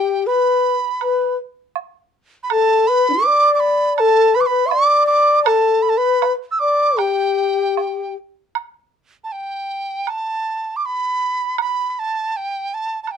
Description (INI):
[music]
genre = chinese traditional, Chinese chamber ensemble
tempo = 80 BPM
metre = 4/4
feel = rubato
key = G gong mode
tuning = A4 = 440 Hz
[part]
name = large dizi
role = melody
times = 0.0-13.2 s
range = G5 to E6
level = -18 LUFS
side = right 3 dB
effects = none
[part]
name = breathy mellow xiao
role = second line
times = 0.0-8.2 s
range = D4 to E5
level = -17 LUFS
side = left 4 dB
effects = none
[part]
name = woodblock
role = percussion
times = 1.0-13.2 s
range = none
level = -22 LUFS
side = right 11 dB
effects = none
[sound]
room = light reverb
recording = dark, warm production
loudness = -15 LUFS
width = side -8 dB against mid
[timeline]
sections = 0.0-8.5 A section; 8.5-13.2 B section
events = none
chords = none